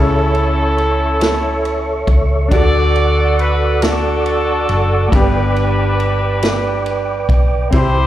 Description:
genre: slow gospel.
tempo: 46 BPM (dotted quarters).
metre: 6/8.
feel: straight.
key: unclear.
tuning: A4 = 440 Hz.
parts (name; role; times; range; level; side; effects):
warm horn section; melody; 0.0-8.1 s; C#4 to D5; -19 LUFS; left 1 dB; none.
warm baby grand piano; accompaniment; 0.0-8.1 s; G2 to A4; -23 LUFS; left 3 dB; slapback echo.
percussive tonewheel organ; sustained chords; 0.0-8.1 s; G4 to D6; -20 LUFS; right 4 dB; slow rotary speaker, chorus vibrato.
hollow-body short-scale fingered electric bass; bass; 0.0-8.1 s; F#1 to D2; -17 LUFS; equal; none.
swinging big-band drum kit; drums; 0.3-7.9 s; kick drum, ride cymbal, snare drum; -18 LUFS; equal; none.
room: light reverb, studio reverb.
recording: live gig heard through the venue's PA, club reverb.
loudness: -13 LUFS.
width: side -12 dB against mid.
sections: 0.0-8.1 A section.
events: none.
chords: 0.0 A/C#; 2.5 D; 5.1 G.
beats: 1.21 | 2.52 3.82 | 5.12 6.42 | 7.72.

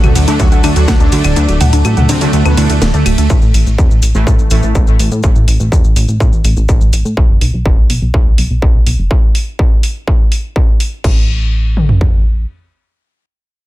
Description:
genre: melodic techno.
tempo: 124 BPM.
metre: 4/4.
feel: straight.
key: unclear.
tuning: A4 = 440 Hz.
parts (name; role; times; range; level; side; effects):
resonant sweep polysynth; melody; 0.0-3.3 s; B2 to F#4; -18 LUFS; right 4 dB; chorus, sidechain pumping, ping-pong delay.
dark chamber string section; sustained chords; 0.0-3.3 s; F#3 to A4; -24 LUFS; left 2 dB; none.
woody wave-folded pluck; arpeggios; 0.0-3.3 s; D4 to F#5; -20 LUFS; left 2 dB; chorus, sidechain pumping, ping-pong delay.
plucky analog bass; bass; 0.0-12.5 s; D1 to A2; -13 LUFS; equal; tube saturation, sidechain pumping.
techno drum kit; drums; 0.0-11.1 s; claves, crash cymbal, hi-hat, ride cymbal, snare drum, toms; -19 LUFS; equal; none.
maracas; percussion; 0.0-7.1 s; none; -27 LUFS; left 4 dB; none.
synth brass stab; stabs; 0.3-5.5 s; A2 to D4; -21 LUFS; right 2 dB; chorus, sidechain pumping, ping-pong delay.
techno drum kit; drums; 0.4-12.1 s; kick drum, toms; -10 LUFS; equal; distortion.
room: little or no reverb.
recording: dense, heavily limited modern master.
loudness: -9 LUFS.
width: side -16 dB against mid.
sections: 0.0-3.3 A section; 3.3-11.0 B section; 11.0-13.7 C section.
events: drop 0.0-3.3; kick drops out 1.4-3.3; filter sweep on analog synth bass 3.3-9.1.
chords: 0.0 D; 3.3 A5; 7.2 B5; 11.0 N.C..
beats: 0.40 0.88 | 1.36 1.85 2.33 2.82 | 3.30 3.78 4.27 4.75 | 5.24 5.72 6.20 6.69 | 7.17 7.66 8.14 8.62 | 9.11 9.59 10.07 10.56 | 11.04 11.53 12.01.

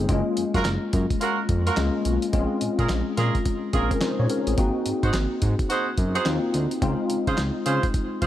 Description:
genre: R&B, new jack swing.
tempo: 107 BPM.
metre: 4/4.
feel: swing 62% on 16ths.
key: Db major.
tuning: A4 = 440 Hz.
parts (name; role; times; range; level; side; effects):
tine electric piano; accompaniment; 0.0-8.3 s; Ab3 to Db5; -26 LUFS; left 2 dB; ensemble chorus.
smooth synth bass; bass; 0.0-8.3 s; Gb1 to Db3; -25 LUFS; equal; none.
dusty soul sampler-style drum kit; drums; 0.1-8.3 s; handclaps, hi-hat, kick drum, snare drum; -27 LUFS; equal; none.
clear horn section; stabs; 0.5-8.3 s; Db4 to C5; -28 LUFS; right 4 dB; digital delay.
room: light reverb.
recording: none.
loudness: -21 LUFS.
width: side -12 dB against mid.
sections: 0.0-8.3 A section.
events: none.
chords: 0.1 Gbmaj7; 2.3 Bbm7; 4.6 Ab7; 6.8 Dbmaj7.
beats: | 0.09 0.65 1.21 1.77 | 2.33 2.89 3.45 4.01 | 4.58 5.14 5.70 6.26 | 6.82 7.38 7.94.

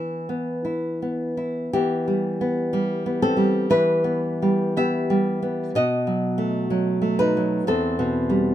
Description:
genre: romantic piece for solo classical guitar.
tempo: 54-65 BPM.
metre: 4/4.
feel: rubato.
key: E minor.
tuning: A4 = 439 Hz.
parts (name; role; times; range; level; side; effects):
nylon-string guitar; solo; 0.0-8.5 s; E2 to E5; -20 LUFS; equal; none.
room: light reverb.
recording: minimal, uncompressed stereo recording.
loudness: -20 LUFS.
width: side -12 dB against mid.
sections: 0.0-1.7 A section; 1.7-8.5 A section.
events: none.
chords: 0.0 Em; 5.8 B7; 7.6 Em.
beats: 0.66 | 1.74 2.75 3.71 4.78 | 5.75 6.69 7.65.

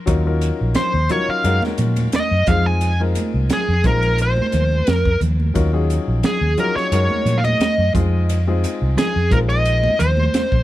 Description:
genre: electric jazz fusion.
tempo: 88 BPM.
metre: 4/4.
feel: swing 53% on 16ths.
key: Eb dorian.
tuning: A4 = 441 Hz.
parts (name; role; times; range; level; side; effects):
warm grand piano; accompaniment; 0.1-10.4 s; Gb3 to Bb4; -25 LUFS; left 5 dB; none.
fingered electric bass; bass; 0.1-10.6 s; Bb1 to Bb2; -18 LUFS; equal; none.
crisp fusion drum kit; drums; 0.1-10.6 s; hi-hat, kick drum, ride cymbal, snare drum; -24 LUFS; right 1 dB; none.
smooth overdriven lead guitar; melody; 0.8-10.6 s; Ab4 to Ab5; -21 LUFS; equal; none.
congas; percussion; 0.8-10.5 s; none; -26 LUFS; right 2 dB; none.
room: little or no reverb.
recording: none.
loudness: -15 LUFS.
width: side -14 dB against mid.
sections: 0.0-10.6 A section.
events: none.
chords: 0.1 Ebm9; 1.5 Gb69; 2.5 Fm7; 3.8 Bb9sus4; 5.6 Ebm9; 6.9 Gb69; 8.0 Fm7; 9.3 Bb9sus4.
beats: | 0.08 0.77 1.45 2.14 | 2.82 3.51 4.19 4.88 | 5.56 6.24 6.93 7.61 | 8.29 8.98 9.66 10.34.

